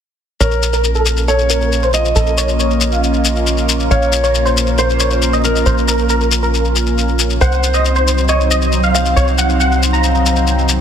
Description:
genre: uplifting trance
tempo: 137 BPM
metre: 4/4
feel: straight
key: Bb minor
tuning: A4 = 440 Hz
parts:
  - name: supersaw stab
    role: melody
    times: 0.4-10.8 s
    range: A4 to Bb5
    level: -19 LUFS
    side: right 1 dB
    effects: low-pass filter, tape echo
  - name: felt-muted upright piano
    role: second line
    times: 0.4-10.8 s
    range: Bb4 to F5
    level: -20 LUFS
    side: equal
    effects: tape echo
  - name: lush unison pad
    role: sustained chords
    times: 0.8-10.8 s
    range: Gb3 to C5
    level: -19 LUFS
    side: left 1 dB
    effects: chorus, phaser
  - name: tight sequencer bass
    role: bass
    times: 0.4-10.8 s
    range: Bb1 to C2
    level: -16 LUFS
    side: equal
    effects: none
  - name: shekere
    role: percussion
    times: 0.4-10.8 s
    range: none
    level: -20 LUFS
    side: left 7 dB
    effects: none
room: light reverb, small room ambience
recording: dense, heavily limited modern master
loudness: -12 LUFS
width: side -8 dB against mid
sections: 0.4-10.8 A section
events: filter sweep on supersaw synth 0.4-10.8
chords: 0.4 Bbmadd9; 7.4 Cdim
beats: | 0.41 0.84 1.28 1.72 | 2.16 2.60 3.03 3.47 | 3.91 4.35 4.79 5.22 | 5.66 6.10 6.54 6.97 | 7.41 7.85 8.29 8.73 | 9.16 9.60 10.04 10.48

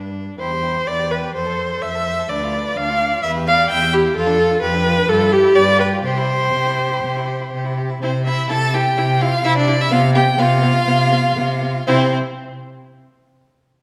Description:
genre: quick classical-period movement for string quartet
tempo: 115-133 BPM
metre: 4/4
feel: rubato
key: C major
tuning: A4 = 439 Hz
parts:
  - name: clear violin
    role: second line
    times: 0.0-12.2 s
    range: C4 to C5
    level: -27 LUFS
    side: equal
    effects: none
  - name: rich cello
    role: bass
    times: 0.0-12.2 s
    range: D2 to C3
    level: -23 LUFS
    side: equal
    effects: none
  - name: rich violin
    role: melody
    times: 0.4-12.1 s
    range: E4 to A5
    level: -26 LUFS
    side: equal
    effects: none
  - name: clear viola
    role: accompaniment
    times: 0.4-12.2 s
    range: B3 to G5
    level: -20 LUFS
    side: equal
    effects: none
room: wet concert hall reverb, RT60 1.8 s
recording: none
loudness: -17 LUFS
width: mono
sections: 0.0-8.0 A section; 8.0-11.9 B section; 11.9-13.8 C section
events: none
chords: 0.4 C/E; 1.4 F; 2.3 Bdim/D; 3.2 Em; 4.2 Dm/F; 5.1 Fmaj9/G; 5.6 G7; 6.0 C; 9.9 Csus4; 11.9 C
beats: | 0.40 0.88 1.36 1.83 | 2.30 2.77 3.24 3.71 | 4.16 4.62 5.09 5.56 | 6.04 6.53 7.03 7.52 | 8.02 8.50 8.97 9.45 | 9.92 10.39 10.87 11.36 | 11.87

